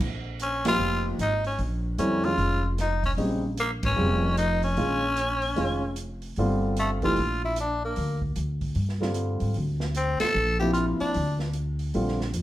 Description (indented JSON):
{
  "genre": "modal jazz",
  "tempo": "151 BPM",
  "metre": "4/4",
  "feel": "swing 64% on 8ths",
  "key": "unclear",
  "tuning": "A4 = 439 Hz",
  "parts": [
    { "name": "upright bass", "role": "bass", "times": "0.0-12.4 s", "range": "F1 to Ab2", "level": "-28 LUFS", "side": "equal", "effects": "none" },
    { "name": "open jazz drum kit", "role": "drums", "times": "0.0-12.4 s", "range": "crash cymbal, hi-hat, kick drum, ride cymbal, snare drum", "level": "-36 LUFS", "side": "right 2 dB", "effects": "none" },
    { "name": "growling tenor saxophone", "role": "melody", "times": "0.4-11.4 s", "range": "A3 to A4", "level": "-27 LUFS", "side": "left 1 dB", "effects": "none" },
    { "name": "warm concert grand piano", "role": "accompaniment", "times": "0.7-12.2 s", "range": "C3 to Ab4", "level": "-28 LUFS", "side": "equal", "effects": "none" }
  ],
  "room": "moderate studio reverb, RT60 0.8 s",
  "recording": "heard from further back in the room",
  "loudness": "-24 LUFS",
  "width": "side -14 dB against mid",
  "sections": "0.0-12.4 A section",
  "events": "band accent 0.6, 3.8, 10.2",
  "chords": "0.0 Bbm7; 6.4 Gm7"
}